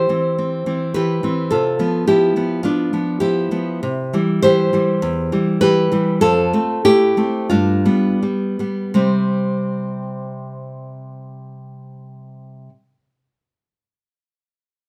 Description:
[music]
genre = romantic piece for solo classical guitar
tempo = 39-54 BPM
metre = 2/4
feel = rubato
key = C major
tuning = A4 = 440 Hz
[part]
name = nylon-string guitar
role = solo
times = 0.0-12.7 s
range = E2 to C5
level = -18 LUFS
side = equal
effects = none
[sound]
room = moderate large studio reverb, RT60 0.8 s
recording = band playing live in one room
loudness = -18 LUFS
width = mono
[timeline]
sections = 0.0-9.0 A section; 9.0-14.4 B section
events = slowing down 2.6-9.0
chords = 0.0 C; 1.5 G13; 3.8 C; 5.0 Em; 6.2 F; 7.5 G7; 9.0 C5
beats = 0.39 | 1.53 2.64 | 3.83 5.03 | 6.22 7.50 | 8.95 10.32 | 11.68

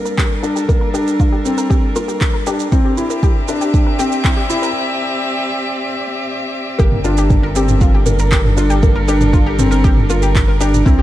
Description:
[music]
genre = piano and strings electronica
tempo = 118 BPM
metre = 4/4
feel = straight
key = G dorian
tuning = A4 = 444 Hz
[part]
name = warm string quartet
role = sustained chords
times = 0.0-11.0 s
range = G3 to E5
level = -21 LUFS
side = equal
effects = sidechain pumping
[part]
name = felt-muted upright piano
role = riff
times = 0.0-11.0 s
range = Bb3 to E4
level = -19 LUFS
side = left 1 dB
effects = ping-pong delay
[part]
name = analog pluck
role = arpeggios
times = 0.1-11.0 s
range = E4 to Bb4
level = -25 LUFS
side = left 3 dB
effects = chorus, cassette tape, sidechain pumping, ping-pong delay
[part]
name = deep house drum kit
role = drums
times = 0.1-11.0 s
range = handclaps, shaker, toms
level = -22 LUFS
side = right 1 dB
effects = none
[part]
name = electronic kick drum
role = drums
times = 0.2-11.0 s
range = none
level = -14 LUFS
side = equal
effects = none
[part]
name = round analog bass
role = bass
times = 6.8-11.0 s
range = G1 to C2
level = -16 LUFS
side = equal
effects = sidechain pumping
[sound]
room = light reverb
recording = none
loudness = -13 LUFS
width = side -14 dB against mid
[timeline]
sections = 0.0-6.8 A section; 6.8-11.0 B section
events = build-up 0.0-6.8; filter sweep on synth arpeggio sound 0.0-6.8; break 4.8-6.8; drop 6.8-11.0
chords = 0.0 Gm7; 2.7 Cadd9; 6.8 Gm7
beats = 0.18 | 0.69 1.20 1.71 2.22 | 2.72 3.23 3.74 4.25 | 4.76 5.27 5.78 6.28 | 6.79 7.30 7.81 8.32 | 8.83 9.34 9.84 10.35 | 10.86

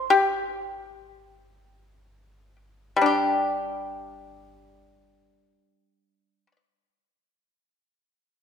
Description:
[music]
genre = chinese traditional, Chinese solo plucked strings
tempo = free time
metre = none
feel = none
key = unclear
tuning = A4 = 440 Hz
[part]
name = pipa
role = solo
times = 0.0-6.6 s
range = G3 to G4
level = -21 LUFS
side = left 2 dB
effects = none
[sound]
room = moderate concert hall reverb, RT60 1.8 s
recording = recorded in a church or concert hall, faint mains hum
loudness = -22 LUFS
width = side -7 dB against mid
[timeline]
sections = 0.0-3.1 A section; 3.1-7.5 B section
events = slowing down 0.0-3.1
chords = none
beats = free time

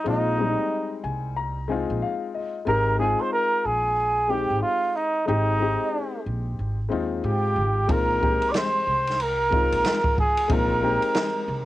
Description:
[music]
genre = hip hop, jazz-hop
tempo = 92 BPM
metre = 4/4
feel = swing 62% on 16ths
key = unclear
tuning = A4 = 444 Hz
[part]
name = warm flugelhorn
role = melody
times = 0.0-11.7 s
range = Eb4 to D5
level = -23 LUFS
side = right 1 dB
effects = none
[part]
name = breathy mellow concert flute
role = second line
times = 0.0-11.7 s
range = Eb5 to D6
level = -32 LUFS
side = right 7 dB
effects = cassette tape
[part]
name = dark grand piano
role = accompaniment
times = 0.0-11.7 s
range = G3 to Bb5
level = -28 LUFS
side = left 6 dB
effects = cassette tape
[part]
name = upright bass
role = bass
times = 0.1-11.7 s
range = Ab1 to Ab2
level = -28 LUFS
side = equal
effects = none
[part]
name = open jazz drum kit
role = drums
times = 7.9-11.3 s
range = hi-hat, kick drum, ride cymbal, snare drum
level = -26 LUFS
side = equal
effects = none
[sound]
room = light reverb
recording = home recording on cassette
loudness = -21 LUFS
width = side -15 dB against mid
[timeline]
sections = 0.0-11.7 A section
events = grand piano fill 0.7-2.7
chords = 0.0 Bb7sus4; 2.7 Fm9/Ab; 7.9 Bb7sus4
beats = | 0.06 0.71 1.36 2.02 | 2.67 3.32 3.97 4.62 | 5.28 5.93 6.58 7.23 | 7.89 8.54 9.19 9.84 | 10.49 11.15

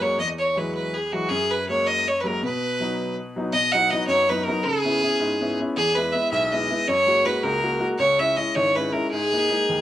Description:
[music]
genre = celtic folk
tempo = 108 BPM (dotted quarters)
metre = 6/8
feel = straight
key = B major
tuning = A4 = 441 Hz
[part]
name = bright fiddle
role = melody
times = 0.0-9.8 s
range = F#4 to F#5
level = -21 LUFS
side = equal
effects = cassette tape
[part]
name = clear upright piano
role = accompaniment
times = 0.0-9.8 s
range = G#1 to F#4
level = -26 LUFS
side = left 1 dB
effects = cassette tape
[sound]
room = light reverb, small room reverb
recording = home recording on cassette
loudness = -20 LUFS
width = side -12 dB against mid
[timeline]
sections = 0.0-3.5 A section; 3.5-9.8 B section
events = none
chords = 0.2 Eadd9; 1.3 F#add9; 2.4 B; 4.6 C#m7; 5.8 E; 6.9 F#add9; 8.0 C#m; 9.1 G#sus2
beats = | 0.18 0.74 | 1.29 1.85 | 2.41 2.97 | 3.53 4.08 | 4.64 5.20 | 5.76 6.31 | 6.87 7.43 | 7.99 8.54 | 9.10 9.66

